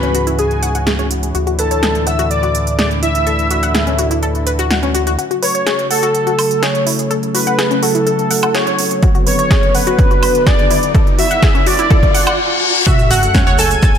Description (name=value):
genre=progressive house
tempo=125 BPM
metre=4/4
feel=straight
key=F# minor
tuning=A4 = 441 Hz
part: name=warm velvety synth lead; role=melody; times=0.0-14.0 s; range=G#4 to G#5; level=-17 LUFS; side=equal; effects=chorus, ping-pong delay
part: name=soft supersaw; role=second line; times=0.0-4.4, 12.9-14.0 s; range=G#5 to G#6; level=-26 LUFS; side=equal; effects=sidechain pumping, ping-pong delay
part: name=warm analog pad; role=sustained chords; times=0.0-14.0 s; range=G#2 to B4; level=-21 LUFS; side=equal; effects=chorus, sidechain pumping
part: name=analog pluck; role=arpeggios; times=0.0-13.9 s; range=C#4 to C#6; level=-20 LUFS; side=left 3 dB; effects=chorus, sidechain pumping, ping-pong delay
part: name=round analog bass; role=bass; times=0.0-5.2, 13.1-13.8 s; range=F#1 to D2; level=-20 LUFS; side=equal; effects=sidechain pumping
part: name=big-room dance drum kit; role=drums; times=0.0-14.0 s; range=hi-hat, snare drum, woodblock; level=-20 LUFS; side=right 2 dB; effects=overdrive, high-pass filter on snare, sidechain pumping on hats, high-pass filter on hats, sidechain pumping on perc, high-pass filter on perc, high-pass filter on room
part: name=swell, riser, reverse cymbal and sub drop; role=sound effects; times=4.4-14.0 s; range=none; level=-20 LUFS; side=left 1 dB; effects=none
part: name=electronic kick drum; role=drums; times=9.0-13.9 s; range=none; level=-13 LUFS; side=equal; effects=overdrive
part: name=tube shaker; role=percussion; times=12.9-14.0 s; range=none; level=-26 LUFS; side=right 2 dB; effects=none
room=light reverb, digital ambience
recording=none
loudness=-12 LUFS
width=side -8 dB against mid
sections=0.0-5.2 A section; 5.2-12.9 B section; 12.9-14.0 C section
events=build-up 5.2-12.9; filter sweep on synth pluck 5.2-12.9; filter sweep on analog synth pad 5.2-12.9; riser 8.4-12.9; reverse cymbal 11.9-12.9; stop 12.4-12.9; drop 12.9-14.0; impact 12.9-14.0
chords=0.0 C#m; 1.3 Dsus2; 5.2 F#m; 9.0 Bm; 12.9 F#m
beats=0.39 0.87 | 1.35 1.83 2.31 2.79 | 3.27 3.75 4.23 4.71 | 5.19 5.67 6.15 6.63 | 7.11 7.59 8.07 8.55 | 9.03 9.51 9.99 10.47 | 10.95 11.43 11.91 12.39 | 12.87 13.35 13.83